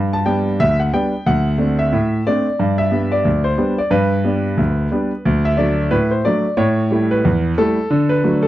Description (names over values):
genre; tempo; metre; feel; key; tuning
ragtime piano; 90 BPM; 2/4; swing 60% on 16ths; G major; A4 = 440 Hz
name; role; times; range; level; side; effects
warm concert grand piano; solo; 0.0-8.5 s; D2 to A5; -15 LUFS; equal; none
room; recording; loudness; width
little or no reverb; dry, close 1970s-style studio recording; -15 LUFS; side -14 dB against mid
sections
0.0-8.5 A section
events
none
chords
0.0 G; 1.3 D5; 2.6 G; 5.3 D; 6.6 A5; 7.9 D